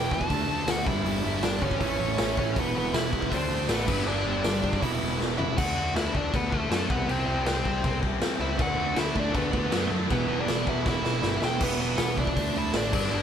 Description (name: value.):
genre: punk rock.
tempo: 159 BPM.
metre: 4/4.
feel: straight.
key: unclear.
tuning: A4 = 438 Hz.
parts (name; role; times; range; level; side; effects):
nasal lead guitar with a parked wah; melody; 0.0-13.2 s; A3 to A5; -30 LUFS; equal; overdrive.
biting overdriven guitar; riff; 0.0-5.6, 8.6-13.2 s; E2 to D4; -32 LUFS; right 7 dB; none.
raw garage guitar; riff; 0.0-11.6 s; E2 to D4; -36 LUFS; right 1 dB; none.
tight distorted guitar; riff; 0.0-13.2 s; G2 to E4; -34 LUFS; left 8 dB; distortion.
fuzz picked electric bass; bass; 0.0-13.2 s; E1 to F#2; -32 LUFS; equal; overdrive.
raw garage drum kit; drums; 0.1-13.0 s; crash cymbal, hi-hat, kick drum, snare drum, toms; -29 LUFS; left 1 dB; none.
room: light reverb.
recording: band playing live in one room.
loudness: -24 LUFS.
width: side -8 dB against mid.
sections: 0.0-5.6 A section; 5.6-11.6 B section; 11.6-13.2 A section.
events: drum fill 5.2-5.6, 10.9-11.6.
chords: 0.3 D; 0.9 G; 1.8 A; 2.6 Em; 3.3 D; 3.9 G; 4.8 Em; 5.6 D; 6.9 C; 8.6 D; 10.1 Em; 12.4 D.